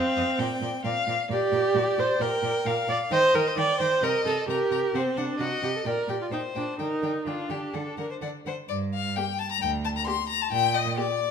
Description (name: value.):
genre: quick classical-period movement for string quartet.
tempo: 132 BPM.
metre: 4/4.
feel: straight.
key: G minor.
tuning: A4 = 440 Hz.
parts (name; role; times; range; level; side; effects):
rich violin; second line; 0.0-11.0 s; F4 to G5; -30 LUFS; left 5 dB; none.
rich viola; accompaniment; 0.0-11.0 s; Bb3 to D5; -26 LUFS; right 3 dB; none.
clear violin; melody; 0.2-11.3 s; D5 to C6; -30 LUFS; left 10 dB; none.
warm cello; bass; 0.2-10.9 s; D2 to Eb3; -33 LUFS; right 5 dB; none.
room: wet recital hall reverb, RT60 1.5 s.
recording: minimal, uncompressed stereo recording.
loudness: -24 LUFS.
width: side -7 dB against mid.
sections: 0.0-8.7 A section; 8.7-11.3 B section.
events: none.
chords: 0.4 Bb; 3.1 Eb; 4.0 Cm7; 4.9 Cdim; 5.9 Gm/Bb; 6.8 Gm/D; 7.7 D; 8.7 Gm; 10.5 Gm/Bb.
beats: 0.40 0.85 | 1.30 1.75 2.21 2.66 | 3.11 3.57 4.02 4.48 | 4.94 5.40 5.86 6.32 | 6.80 7.27 7.75 8.22 | 8.69 9.15 9.61 10.06 | 10.51 10.96.